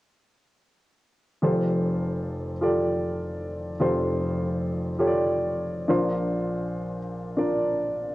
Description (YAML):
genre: pop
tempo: 101 BPM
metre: 4/4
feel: straight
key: F major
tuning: A4 = 441 Hz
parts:
  - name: dark upright piano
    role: accompaniment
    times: 1.4-8.1 s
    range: F1 to D5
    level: -24 LUFS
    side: equal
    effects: cassette tape
room: moderate spring reverb, RT60 1.2 s, small room ambience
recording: home recording on cassette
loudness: -24 LUFS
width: side -18 dB against mid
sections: 1.4-8.1 A section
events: none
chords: 1.4 Fadd9; 5.9 Bbadd9